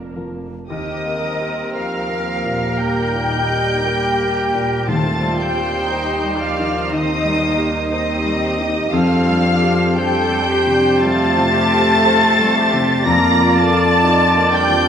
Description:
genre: cinematic, emotional film score for orchestra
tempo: 58 BPM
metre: 4/4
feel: rubato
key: Eb lydian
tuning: A4 = 442 Hz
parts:
  - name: muted studio violin section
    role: melody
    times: 0.0-14.9 s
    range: Bb4 to Bb6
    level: -23 LUFS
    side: left 2 dB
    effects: none
  - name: muted studio violin section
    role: second line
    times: 0.0-14.9 s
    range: Bb3 to Bb5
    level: -24 LUFS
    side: left 1 dB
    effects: none
  - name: muted studio viola section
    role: accompaniment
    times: 0.0-14.9 s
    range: Bb3 to D5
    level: -24 LUFS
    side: right 2 dB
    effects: none
  - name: warm grand piano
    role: accompaniment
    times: 0.0-14.9 s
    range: Eb2 to D5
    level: -23 LUFS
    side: left 1 dB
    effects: none
  - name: mellow French horn section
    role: sustained chords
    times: 0.0-14.9 s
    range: Eb3 to A4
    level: -23 LUFS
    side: left 1 dB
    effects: none
  - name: concert harp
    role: arpeggios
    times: 0.0-14.9 s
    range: Eb3 to F5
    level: -28 LUFS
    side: left 3 dB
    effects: none
  - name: muted studio cello section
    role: bass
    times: 0.0-14.9 s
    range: F2 to Bb4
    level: -26 LUFS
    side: right 4 dB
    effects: none
  - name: muted studio double bass section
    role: bass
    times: 0.0-14.9 s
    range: F1 to F2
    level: -27 LUFS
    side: right 3 dB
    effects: none
  - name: bright oboe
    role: second line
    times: 0.7-14.9 s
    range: Bb4 to D5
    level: -27 LUFS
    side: right 1 dB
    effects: none
  - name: flute section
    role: second line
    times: 0.7-14.9 s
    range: Eb5 to Bb5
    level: -24 LUFS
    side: equal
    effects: none
  - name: warm clarinet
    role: second line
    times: 0.7-14.9 s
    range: F4 to G4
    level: -28 LUFS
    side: left 1 dB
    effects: none
  - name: timpani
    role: percussion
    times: 4.9-6.4 s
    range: Eb3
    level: -27 LUFS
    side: equal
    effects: none
room: wet recital hall reverb, RT60 1.7 s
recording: recorded in a church or concert hall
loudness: -14 LUFS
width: side -8 dB against mid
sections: 0.7-14.9 A section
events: none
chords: 0.0 Bb/F; 0.7 Eb; 4.9 Cm/Eb; 8.9 Fsus2; 13.1 Bb/F

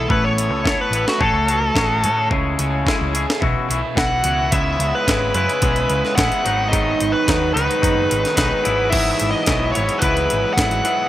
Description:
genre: indie rock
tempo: 109 BPM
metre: 4/4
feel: straight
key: unclear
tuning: A4 = 441 Hz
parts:
  - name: bluesy overdriven lead guitar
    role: melody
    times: 0.0-11.1 s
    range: F#4 to F#5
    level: -20 LUFS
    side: equal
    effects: distortion, analog delay
  - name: overdriven semi-hollow guitar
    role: riff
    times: 0.0-11.1 s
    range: G#2 to B4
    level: -24 LUFS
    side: right 4 dB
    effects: lush chorus, analog delay
  - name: twangy electric guitar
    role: riff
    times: 0.0-11.1 s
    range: G#2 to C#5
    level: -23 LUFS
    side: left 5 dB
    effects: analog delay
  - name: hollow-body short-scale picked electric bass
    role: bass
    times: 0.0-10.8 s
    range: F#1 to A2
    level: -23 LUFS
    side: equal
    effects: none
  - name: jungle sampler-style drum kit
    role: drums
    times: 0.1-11.0 s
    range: crash cymbal, hi-hat, kick drum, snare drum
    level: -21 LUFS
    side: equal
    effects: none
  - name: chorused pulse-width pad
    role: sustained chords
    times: 4.5-11.1 s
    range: E4 to B5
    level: -32 LUFS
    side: left 2 dB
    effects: none
room: digital ambience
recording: echo-heavy mix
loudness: -16 LUFS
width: side -13 dB against mid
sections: 0.0-4.5 A section; 4.5-11.1 B section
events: lead electric guitar solo 0.0-4.5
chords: 0.1 Aadd9; 1.2 F#madd9/A; 2.3 C#m; 3.4 Bsus4; 4.5 C#m7; 6.5 G#m7; 8.7 Eadd9/G#

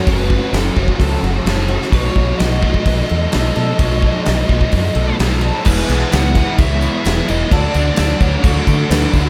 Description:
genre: rock, shoegaze and dream pop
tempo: 129 BPM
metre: 4/4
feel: straight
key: E major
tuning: A4 = 441 Hz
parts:
  - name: fuzz lead guitar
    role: melody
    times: 0.0-9.1 s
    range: A4 to F#5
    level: -26 LUFS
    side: equal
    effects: distortion, tape echo
  - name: picked twelve-string acoustic guitar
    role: arpeggios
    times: 0.0-9.3 s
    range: F#4 to C#5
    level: -30 LUFS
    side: equal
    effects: analog chorus, tape echo
  - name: biting overdriven guitar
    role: riff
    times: 0.0-9.3 s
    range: F#2 to E4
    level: -25 LUFS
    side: equal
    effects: reverse reverb
  - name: overdriven semi-hollow guitar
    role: riff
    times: 0.0-9.3 s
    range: F#2 to F#4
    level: -24 LUFS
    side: equal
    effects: ensemble chorus
  - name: fingered electric bass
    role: bass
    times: 0.1-9.3 s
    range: E1 to D3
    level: -20 LUFS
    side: equal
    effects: none
  - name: huge arena drum kit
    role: drums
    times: 0.1-9.2 s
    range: crash cymbal, hi-hat, kick drum, snare drum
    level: -20 LUFS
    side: equal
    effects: none
  - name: tambourine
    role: percussion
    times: 5.9-9.3 s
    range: none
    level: -40 LUFS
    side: equal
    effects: none
room: light reverb, studio reverb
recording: none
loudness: -15 LUFS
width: mono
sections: 0.0-5.7 A section; 5.7-9.3 B section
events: none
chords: 0.0 F#m; 1.9 B7; 5.7 E; 7.5 Dmaj7

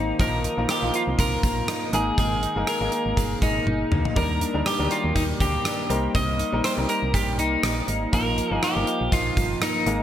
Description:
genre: 1980s-style pop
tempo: 121 BPM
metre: 4/4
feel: swing 55% on 16ths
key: unclear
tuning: A4 = 444 Hz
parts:
  - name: electric guitar at the edge of break-up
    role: melody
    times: 0.0-10.0 s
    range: Eb4 to Eb5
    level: -26 LUFS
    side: left 1 dB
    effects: lush chorus
  - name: bright grand piano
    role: accompaniment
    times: 0.0-10.0 s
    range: Eb3 to Bb4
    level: -29 LUFS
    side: left 2 dB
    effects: none
  - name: direct-recorded clean electric guitar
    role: riff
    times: 0.0-10.0 s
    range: Eb3 to Ab4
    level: -30 LUFS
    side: right 3 dB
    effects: analog chorus
  - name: solid FM bass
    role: bass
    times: 0.0-10.0 s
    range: G1 to Eb2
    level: -27 LUFS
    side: equal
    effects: none
  - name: gated 80s drum kit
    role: drums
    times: 0.2-10.0 s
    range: hi-hat, kick drum, rim click, toms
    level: -26 LUFS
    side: equal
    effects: none
room: light reverb, small room ambience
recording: bright 1980s-style digital production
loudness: -21 LUFS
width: side -10 dB against mid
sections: 0.0-10.0 A section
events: drum fill 3.7-4.2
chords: 0.2 Bbsus4; 1.9 Absus2; 4.2 Ebmaj7; 5.9 Cm7; 8.1 Bbsus4

